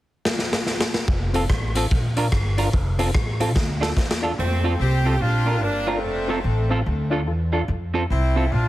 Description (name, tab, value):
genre	ska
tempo	145 BPM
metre	4/4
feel	swing 62% on 8ths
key	F major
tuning	A4 = 438 Hz
part	raw garage drum kit	drums	0.3-4.2 s	hi-hat, kick drum, rim click, snare drum	-23 LUFS	equal	none
part	upright bass	bass	1.1-8.7 s	F1 to F2	-22 LUFS	equal	tube saturation
part	semi-hollow electric guitar	accompaniment	1.3-8.4 s	C4 to Bb4	-28 LUFS	right 4 dB	tape echo
part	tonewheel organ	stabs	1.3-8.5 s	C4 to Bb4	-29 LUFS	left 3 dB	chorus vibrato, slow rotary speaker, tape echo, plate reverb
part	clear horn section	melody	4.4-8.7 s	A3 to G4	-25 LUFS	equal	tape echo
room	light reverb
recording	heavily compressed radio sound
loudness	-19 LUFS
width	side -15 dB against mid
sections	0.0-1.1 A section; 1.1-4.4 B section; 4.4-8.7 C section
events	drum fill 0.3-1.1, 3.6-4.4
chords	0.0 N.C.; 1.1 F; 1.9 Bb; 2.7 F; 3.6 Dm; 4.4 F; 5.2 Bb; 6.0 F; 6.9 Dm; 7.7 F